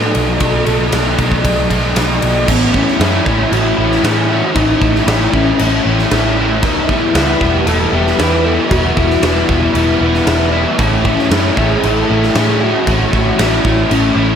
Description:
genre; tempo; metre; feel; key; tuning
rock, shoegaze and dream pop; 116 BPM; 4/4; straight; A lydian; A4 = 440 Hz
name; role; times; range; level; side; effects
warm velvety synth lead; melody; 0.0-14.4 s; B3 to B4; -19 LUFS; left 1 dB; chorus, ping-pong delay
biting overdriven guitar; riff; 0.0-14.4 s; A2 to E4; -14 LUFS; left 1 dB; analog chorus
vintage muted picked electric bass; bass; 0.0-14.3 s; E1 to A2; -18 LUFS; equal; none
big rock drum kit; drums; 0.1-14.0 s; crash cymbal, kick drum, ride cymbal, snare drum; -18 LUFS; equal; none
room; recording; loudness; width
wet plate reverb, RT60 1.9 s; dreamy mix soaked in reverb; -11 LUFS; side -8 dB against mid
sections
0.0-2.5 A section; 2.5-14.4 B section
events
none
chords
0.0 B7; 2.5 A; 6.6 Em; 10.8 A

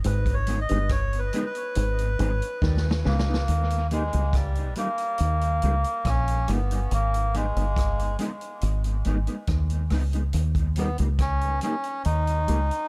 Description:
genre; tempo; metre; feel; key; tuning
roots reggae; 70 BPM; 4/4; straight; G# harmonic minor; A4 = 438 Hz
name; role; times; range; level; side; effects
muted clav; riff; 0.0-3.3 s; G2 to D#3; -34 LUFS; equal; none
deep dub fingered electric bass; bass; 0.0-12.7 s; G1 to D#2; -27 LUFS; equal; none
vintage drum kit; drums; 0.0-12.9 s; hi-hat, kick drum, rim click, snare drum; -32 LUFS; equal; dub echo
melodica; melody; 0.1-12.9 s; G3 to D#5; -31 LUFS; equal; dub echo
mellow electric guitar; accompaniment; 0.5-12.6 s; G3 to D#4; -36 LUFS; equal; ensemble chorus, dub echo
room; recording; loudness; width
small room reverb; echo-heavy mix; -25 LUFS; mono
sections
0.0-3.5 A section; 3.5-12.9 B section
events
melodica solo 0.0-3.5; drum fill 2.6-3.5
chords
0.0 G#m; 3.5 D#; 6.9 G#m; 10.3 D#

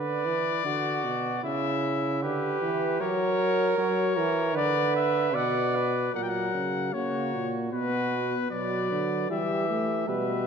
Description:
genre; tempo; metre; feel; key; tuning
classical, imitative canzona for brass ensemble; 76 BPM; 4/4; straight; B minor; A4 = 440 Hz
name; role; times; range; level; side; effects
clear trumpet; melody; 0.0-10.5 s; B4 to G5; -30 LUFS; left 9 dB; none
clear flugelhorn; second line; 0.0-10.5 s; E4 to D5; -30 LUFS; right 6 dB; none
clear bass trombone; bass; 0.0-10.5 s; A#2 to F#3; -30 LUFS; equal; none
warm euphonium; accompaniment; 6.1-10.5 s; F#3 to B3; -31 LUFS; right 2 dB; none
room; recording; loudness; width
wet concert hall reverb, RT60 1.8 s; dark, warm production; -25 LUFS; side -6 dB against mid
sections
0.0-6.1 A section; 6.1-10.5 B section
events
none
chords
0.0 Bm/D; 1.4 C#dim; 3.0 F#; 4.6 Bm/D; 6.1 F#/A#; 7.7 Bm; 9.3 Em

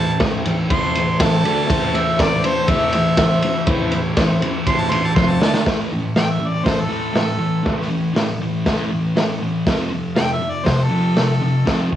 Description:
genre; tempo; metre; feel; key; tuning
garage rock duo or trio; 120 BPM; 4/4; straight; A minor; A4 = 441 Hz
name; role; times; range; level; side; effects
clear harmonica; melody; 0.0-11.8 s; A4 to C6; -22 LUFS; equal; overdrive
combo organ; sustained chords; 0.0-5.6 s; A3 to D5; -28 LUFS; left 3 dB; cassette tape
thick fuzz guitar; riff; 0.0-12.0 s; F2 to D4; -20 LUFS; equal; distortion, cassette tape
raw garage drum kit; drums; 0.2-12.0 s; hi-hat, kick drum, ride cymbal, snare drum; -20 LUFS; equal; cassette tape
room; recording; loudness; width
light reverb, studio reverb; home recording on cassette, small room ambience; -16 LUFS; side -11 dB against mid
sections
0.0-5.7 A section; 5.7-12.0 B section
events
harmonica solo 0.0-5.7; drum fill 5.2-5.7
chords
0.0 Am; 1.4 D5; 1.7 Am; 5.2 F5; 5.4 D5; 5.7 A5; 9.7 F

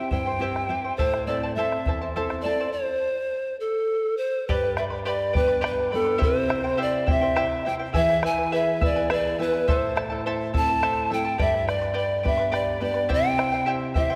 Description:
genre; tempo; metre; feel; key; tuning
andean folk, Andean ensemble; 69 BPM (dotted quarters); 6/8; straight; A minor; A4 = 440 Hz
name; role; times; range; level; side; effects
breathy polished pan flute; melody; 0.0-14.2 s; A4 to A5; -27 LUFS; equal; none
charango; accompaniment; 0.0-14.2 s; E4 to B5; -32 LUFS; equal; none
nylon-string guitar; accompaniment; 0.0-14.2 s; E2 to A4; -33 LUFS; equal; none
bombo; percussion; 0.1-14.2 s; none; -31 LUFS; equal; none
room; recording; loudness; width
wet scoring stage reverb, RT60 2.1 s; none; -24 LUFS; mono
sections
0.0-4.5 A section; 4.5-14.2 B section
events
none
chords
0.0 C; 1.0 Am; 2.7 N.C.; 4.5 G; 6.2 C; 7.9 E; 9.7 Am; 11.4 G; 13.1 C

